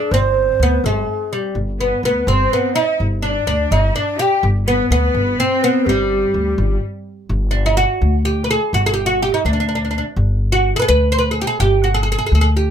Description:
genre	Persian modal ensemble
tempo	84 BPM (dotted quarters)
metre	6/8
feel	straight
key	G dastgah chahargah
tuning	A4 = 441 Hz
part	oud	melody	0.0-12.7 s	G3 to C5	-18 LUFS	right 2 dB	none
part	breathy low ney	second line	0.0-6.8 s	G4 to G5	-22 LUFS	left 5 dB	none
part	upright bass	bass	0.1-12.7 s	G1 to D2	-18 LUFS	equal	none
part	bright symphonic cello section	second line	1.8-6.8 s	G3 to G4	-23 LUFS	equal	none
room	little or no reverb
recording	close, detailed microphones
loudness	-14 LUFS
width	side -8 dB against mid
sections	0.0-7.3 A section; 7.3-12.7 B section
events	none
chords	none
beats	| 0.11 0.83 | 1.55 2.27 | 2.99 3.71 | 4.42 5.14 | 5.86 6.58 | 7.30 8.02 | 8.73 9.45 | 10.17 10.88 | 11.60 12.32

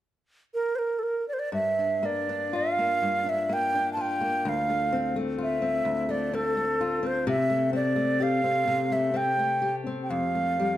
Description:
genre	celtic folk, Celtic slow air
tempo	63 BPM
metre	3/4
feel	rubato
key	G dorian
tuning	A4 = 440 Hz
part	wooden flute	melody	0.5-10.8 s	A4 to A5	-26 LUFS	right 1 dB	none
part	fingerpicked steel-string acoustic guitar	accompaniment	1.5-10.8 s	D2 to G4	-28 LUFS	left 2 dB	none
room	moderate recital hall reverb, RT60 1.4 s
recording	none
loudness	-24 LUFS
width	side -13 dB against mid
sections	0.0-1.5 A section; 1.5-10.8 B section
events	none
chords	0.0 N.C.; 1.5 Gm7; 4.5 Dm7; 7.3 C5; 10.1 Fadd9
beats	0.53 | 1.52 2.53 3.49 | 4.45 5.40 6.34 | 7.27 8.20 9.15 | 10.10

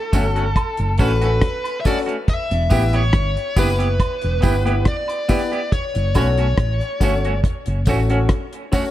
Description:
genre	roots reggae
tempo	70 BPM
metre	4/4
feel	straight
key	unclear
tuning	A4 = 444 Hz
part	smooth overdriven lead guitar	melody	0.0-7.4 s	A4 to E5	-24 LUFS	left 1 dB	tape echo
part	clean electric guitar	accompaniment	0.1-8.8 s	A3 to G4	-27 LUFS	right 4 dB	tape echo
part	warm grand piano	stabs	0.1-8.9 s	A3 to C#5	-25 LUFS	left 4 dB	none
part	hollow-body short-scale fingered electric bass	bass	0.1-8.3 s	E1 to B1	-19 LUFS	equal	none
part	deep reggae drum kit	drums	0.1-8.9 s	hi-hat, kick drum, rim click	-20 LUFS	equal	none
part	tambourine and woodblock	percussion	0.1-8.9 s	none	-32 LUFS	right 4 dB	none
room	studio reverb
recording	echo-heavy mix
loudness	-16 LUFS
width	side -14 dB against mid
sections	0.0-8.9 A section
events	none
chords	0.0 F#m; 2.3 Em; 5.7 F#m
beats	0.57 1.43 | 2.29 3.15 4.00 4.86 | 5.72 6.58 7.44 8.30

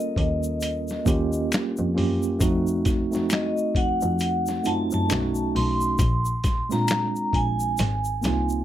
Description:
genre	R&B, neo-soul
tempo	67 BPM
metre	4/4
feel	swing 60% on 16ths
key	unclear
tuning	A4 = 439 Hz
part	vibraphone with medium hard mallets	melody	0.0-8.6 s	Eb5 to C6	-27 LUFS	equal	slapback echo
part	mellow tine electric piano	accompaniment	0.0-8.6 s	Ab3 to Bb4	-26 LUFS	right 2 dB	medium stereo tremolo
part	rich double bass	bass	0.2-8.6 s	Ab1 to Bb2	-27 LUFS	equal	none
part	boom bap sampler-style drum kit	drums	0.2-8.5 s	finger snaps, hi-hat, kick drum, snare drum	-26 LUFS	equal	none
part	egg shaker and finger snaps	percussion	0.4-8.6 s	none	-35 LUFS	left 7 dB	none
room	little or no reverb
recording	none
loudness	-21 LUFS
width	side -12 dB against mid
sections	0.0-8.6 A section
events	drum fill 7.8-8.6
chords	0.0 Eb7; 2.4 F7b9; 5.1 B9; 6.0 Bb9; 7.8 Ab69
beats	0.61 1.51 | 2.40 3.30 4.20 5.09 | 5.99 6.88 7.78

